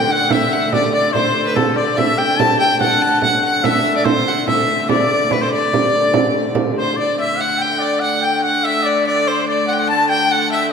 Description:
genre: medieval dance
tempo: 144 BPM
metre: 3/4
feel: straight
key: D mixolydian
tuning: A4 = 441 Hz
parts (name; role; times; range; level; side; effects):
- bright fiddle; melody; 0.0-10.7 s; A4 to A5; -18 LUFS; equal; none
- bright shawm; second line; 0.0-10.7 s; A4 to A5; -19 LUFS; left 4 dB; none
- dark hurdy-gurdy; drone; 0.0-10.7 s; D3 to A3; -23 LUFS; equal; none
- frame drum; percussion; 0.1-6.7 s; none; -20 LUFS; right 4 dB; none
room: wet church reverb, RT60 2.7 s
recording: none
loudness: -14 LUFS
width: side -6 dB against mid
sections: 0.0-7.0 A section; 7.0-10.7 B section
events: none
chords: none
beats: 0.31 | 0.73 1.15 1.56 | 1.98 2.40 2.81 | 3.23 3.65 4.06 | 4.48 4.90 5.31 | 5.73 6.14 6.56 | 6.98 7.39 7.81 | 8.22 8.64 9.05 | 9.47 9.88 10.30 | 10.71

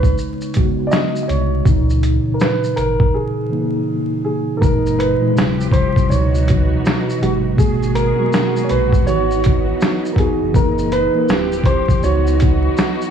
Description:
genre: lo-fi hip hop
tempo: 81 BPM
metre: 4/4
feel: swing 63% on 16ths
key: C# dorian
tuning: A4 = 444 Hz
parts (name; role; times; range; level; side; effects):
- dark upright piano; melody; 0.0-13.1 s; F#4 to D#5; -21 LUFS; right 2 dB; low-pass filter, tape echo
- mellow tine electric piano; accompaniment; 0.0-13.1 s; A#2 to A#4; -19 LUFS; equal; medium stereo tremolo, cassette tape, low-pass filter
- sub bass with octave; bass; 0.0-12.7 s; D1 to C#2; -20 LUFS; equal; none
- lo-fi sampler-style drum kit; drums; 0.0-13.1 s; hi-hat, kick drum, shaker, snare drum; -17 LUFS; equal; overdrive
- warm studio string section; sustained chords; 4.6-13.1 s; A#2 to G#4; -25 LUFS; right 1 dB; low-pass filter
room: light reverb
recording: vinyl crackle, studio reverb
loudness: -14 LUFS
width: side -8 dB against mid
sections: 0.0-4.6 A section; 4.6-13.1 B section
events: break 3.1-4.6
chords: 0.0 B69; 1.7 C#m69; 4.6 F#13; 5.4 Dm11; 6.1 C#m11; 7.6 G#m9; 9.1 C#m11/G#; 10.5 F#13; 11.3 Dm11; 12.0 C#m11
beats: 0.18 0.92 | 1.66 2.40 3.14 3.88 | 4.62 5.36 6.10 6.84 | 7.58 8.32 9.07 9.81 | 10.55 11.29 12.03 12.77

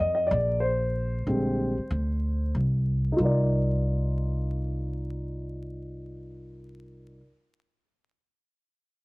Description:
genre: hip hop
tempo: 94 BPM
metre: 4/4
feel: swing 58% on 16ths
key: C minor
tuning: A4 = 440 Hz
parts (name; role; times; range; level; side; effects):
- dark grand piano; accompaniment; 0.0-7.2 s; D3 to Eb5; -29 LUFS; equal; low-pass filter, cassette tape
- upright bass; bass; 0.0-7.2 s; Bb1 to F2; -27 LUFS; equal; none
room: small room ambience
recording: home recording on cassette, vinyl crackle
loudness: -24 LUFS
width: side -24 dB against mid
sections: 0.0-3.2 A section; 3.2-5.7 B section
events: grand piano solo 0.0-3.2; filter sweep on grand piano 0.0-3.2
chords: 0.3 Bb13; 3.2 Cm11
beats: 0.00 | 0.63 1.27 1.91 2.55 | 3.19 3.83 4.46 5.10

